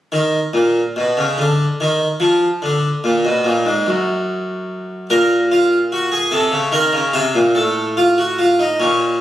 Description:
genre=classical, baroque-style 3-part fugue for harpsichord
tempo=48 BPM (dotted quarters)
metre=6/8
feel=straight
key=unclear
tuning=A4 = 440 Hz
part: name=harpsichord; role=solo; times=0.1-9.2 s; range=Gb2 to C5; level=-14 LUFS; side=equal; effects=none
room=moderate studio reverb, RT60 0.8 s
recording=recorded on a phone in the room, studio reverb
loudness=-14 LUFS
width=side -13 dB against mid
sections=0.1-9.2 A section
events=none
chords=0.1 N.C.; 5.1 Bb5; 6.3 Adim/C; 7.6 F7/A

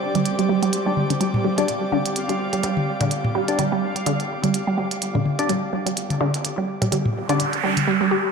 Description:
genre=minimal techno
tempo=126 BPM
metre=4/4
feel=swing 56% on 16ths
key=unclear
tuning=A4 = 439 Hz
part: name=saturated sub bass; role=bass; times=0.0-7.8 s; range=D1 to G2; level=-40 LUFS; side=equal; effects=none
part: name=big rock drum kit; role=drums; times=0.0-7.8 s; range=none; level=barely audible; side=none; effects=none
part: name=airy breathy pad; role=texture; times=0.0-7.9 s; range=G3 to D6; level=-29 LUFS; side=equal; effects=chorus
part: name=bubbling stepped-filter texture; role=texture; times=0.0-7.9 s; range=C4 to F5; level=-33 LUFS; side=right 1 dB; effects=chorus, built-in reverb
part: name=electronic hi-hat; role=drums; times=0.1-7.9 s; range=none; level=-29 LUFS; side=right 3 dB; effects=none
part: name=resonant blip pluck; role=riff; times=0.2-8.1 s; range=D3 to G4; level=-22 LUFS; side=right 2 dB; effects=phaser, cassette tape, tape echo
part: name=electronic toms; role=percussion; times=0.2-7.9 s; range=none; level=-26 LUFS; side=left 2 dB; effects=tape echo
part: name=percussive organ stab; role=stabs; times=0.9-7.4 s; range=D4 to D5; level=-29 LUFS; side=left 3 dB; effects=lush chorus, tape echo
part: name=noise sweep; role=sound effects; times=7.2-8.3 s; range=none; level=-24 LUFS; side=right 6 dB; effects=none
room=wet plate reverb, RT60 1.8 s, small room ambience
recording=dreamy mix soaked in reverb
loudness=-20 LUFS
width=side -5 dB against mid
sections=0.0-8.3 A section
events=filter sweep on synth arpeggio sound 0.0-8.3; filter sweep on synth stab 0.0-8.3; noise sweep 7.2-8.3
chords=0.0 G5

